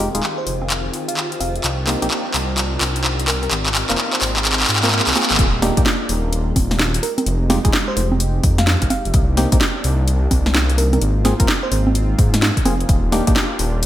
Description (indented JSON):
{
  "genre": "UK garage, two-step garage",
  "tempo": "128 BPM",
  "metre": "4/4",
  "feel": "swing 64% on 16ths",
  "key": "F dorian",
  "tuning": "A4 = 438 Hz",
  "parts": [
    { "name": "warm analog pad", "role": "sustained chords", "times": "0.0-13.9 s", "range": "Ab3 to Bb4", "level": "-29 LUFS", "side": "equal", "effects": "chorus, sidechain pumping" },
    { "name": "percussive organ stab", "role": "stabs", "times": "0.0-13.3 s", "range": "Ab3 to Bb4", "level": "-24 LUFS", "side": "equal", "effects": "chorus, digital delay" },
    { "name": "dark detuned saw bass", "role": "bass", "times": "0.0-13.9 s", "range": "Eb1 to Ab2", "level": "-20 LUFS", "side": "equal", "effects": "sidechain pumping" },
    { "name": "house drum kit", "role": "drums", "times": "0.0-13.9 s", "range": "congas, handclaps, hi-hat, snare drum", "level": "-19 LUFS", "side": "equal", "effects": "overdrive, high-pass filter on snare, studio reverb, high-pass filter on hats, high-pass filter on perc, gated reverb" },
    { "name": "granular cloud pad", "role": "texture", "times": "0.0-5.4 s", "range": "Eb3 to Bb5", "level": "-30 LUFS", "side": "equal", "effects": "built-in reverb, sidechain pumping" },
    { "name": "bell-like FM electric piano", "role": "melody", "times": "0.4-11.8 s", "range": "Bb4 to F5", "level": "-29 LUFS", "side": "right 1 dB", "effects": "chorus, digital delay" },
    { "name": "electronic kick drum", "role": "drums", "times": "5.4-13.3 s", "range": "none", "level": "-18 LUFS", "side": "equal", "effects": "studio reverb" }
  ],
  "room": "moderate lush hall reverb, RT60 2.1 s",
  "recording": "bright 1980s-style digital production, faint mains hum",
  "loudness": "-15 LUFS",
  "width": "side -13 dB against mid",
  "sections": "0.0-5.4 A section; 5.4-13.9 B section",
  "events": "build-up 0.0-5.4; drum fill 0.0-5.4; drop 5.4-13.9",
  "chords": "0.0 Fm9; 1.6 Cm7; 3.5 Ab69; 5.4 Ebmaj7; 7.0 Fm9; 9.1 Cm7; 11.0 Ab69; 12.9 Ebmaj7",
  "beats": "0.23 0.70 1.17 | 1.64 2.11 2.58 3.04 | 3.51 3.98 4.45 4.92 | 5.39 5.86 6.33 6.79 | 7.26 7.73 8.20 8.67 | 9.14 9.61 10.08 10.54 | 11.01 11.48 11.95 12.42 | 12.89 13.36 13.83"
}